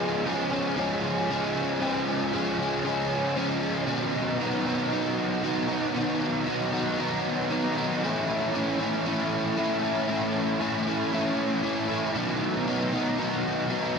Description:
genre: rock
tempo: 116 BPM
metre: 4/4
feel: straight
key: unclear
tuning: A4 = 440 Hz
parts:
  - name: biting overdriven guitar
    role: solo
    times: 0.0-14.0 s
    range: A2 to E4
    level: -24 LUFS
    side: equal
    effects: analog chorus, ping-pong delay
room: wet huge ambient reverb, RT60 8.3 s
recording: dreamy mix soaked in reverb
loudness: -24 LUFS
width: side -5 dB against mid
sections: 0.0-3.9 A section; 3.9-14.0 B section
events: none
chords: 0.0 C#; 3.9 B; 8.0 A; 12.2 B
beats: 0.27 0.78 1.30 | 1.82 2.34 2.85 3.37 | 3.89 4.41 4.93 5.45 | 5.96 6.48 7.00 7.52 | 8.04 8.55 9.07 9.59 | 10.11 10.62 11.14 11.65 | 12.17 12.68 13.20 13.71

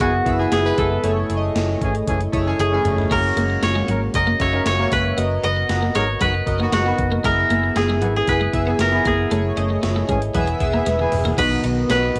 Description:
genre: 1980s-style pop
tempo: 116 BPM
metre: 4/4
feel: straight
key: unclear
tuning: A4 = 437 Hz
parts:
  - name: koto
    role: melody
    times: 0.0-12.2 s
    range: F#4 to D#5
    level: -24 LUFS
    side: equal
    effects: cassette tape
  - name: chorused retro synth keys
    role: accompaniment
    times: 0.0-12.2 s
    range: B2 to F#5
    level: -26 LUFS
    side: equal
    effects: cassette tape
  - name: clear horn section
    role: stabs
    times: 0.0-11.4 s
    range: D#3 to C#5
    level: -29 LUFS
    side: equal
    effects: cassette tape, analog delay
  - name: vintage muted fingered electric bass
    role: bass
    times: 0.0-12.2 s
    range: E1 to B1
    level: -26 LUFS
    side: equal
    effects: none
  - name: gated 80s digital drum machine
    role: drums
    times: 0.0-12.2 s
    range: crash cymbal, hi-hat, kick drum, snare drum, toms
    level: -29 LUFS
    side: equal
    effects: gated reverb, gated reverb snare, overdrive, cassette tape
  - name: twelve-string electric guitar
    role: riff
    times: 3.1-12.1 s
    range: F#3 to D#4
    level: -29 LUFS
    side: equal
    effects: analog chorus, cassette tape, analog delay
  - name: brassy analog pad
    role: sustained chords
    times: 11.4-12.2 s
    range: D#3 to F#4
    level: -28 LUFS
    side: equal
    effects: chorus, tremolo, cassette tape
room: wet booth ambience, RT60 0.2 s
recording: home recording on cassette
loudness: -19 LUFS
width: mono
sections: 0.0-11.4 A section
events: drum fill 2.6-3.1, 10.9-11.4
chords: 0.0 E/F#; 1.0 Amaj7/F#; 3.1 F#; 5.2 Bmaj7/F#; 7.2 E/F#; 9.3 Amaj7/F#; 10.3 E; 11.4 B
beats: 0.00 0.52 | 1.04 1.55 2.07 2.59 | 3.11 3.62 4.14 4.66 | 5.18 5.69 6.21 6.73 | 7.25 7.76 8.28 8.80 | 9.31 9.83 10.35 10.87 | 11.38 11.90

